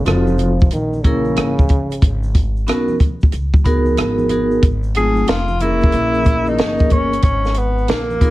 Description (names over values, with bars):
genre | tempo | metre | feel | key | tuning
hip hop, jazz-hop | 92 BPM | 4/4 | swing 66% on 16ths | G# minor | A4 = 441 Hz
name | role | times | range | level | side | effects
dark trombone | second line | 0.0-2.3 s | C#3 to F3 | -21 LUFS | right 1 dB | none
upright bass | bass | 0.0-8.3 s | F1 to C#2 | -21 LUFS | equal | none
vibraphone with medium hard mallets | accompaniment | 0.1-8.3 s | F#3 to A#4 | -19 LUFS | equal | none
compact cocktail drum kit | drums | 0.1-8.3 s | hi-hat, kick drum, rim click, snare drum | -15 LUFS | equal | none
tube shaker and congas | percussion | 0.1-8.3 s | none | -30 LUFS | equal | none
warm tenor saxophone | melody | 5.0-8.3 s | A#3 to G#4 | -19 LUFS | equal | none
room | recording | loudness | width
moderate studio reverb, RT60 0.7 s | cassette tape | -14 LUFS | side -17 dB against mid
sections
0.0-4.6 A section; 4.6-8.3 A section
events
none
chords
0.1 F7b9; 0.7 A#m7b5; 2.0 G#m11; 3.3 C#sus2; 4.0 G#m9; 4.6 G#5; 5.3 A#m7/E#; 5.9 A#m7b5; 7.2 G#madd9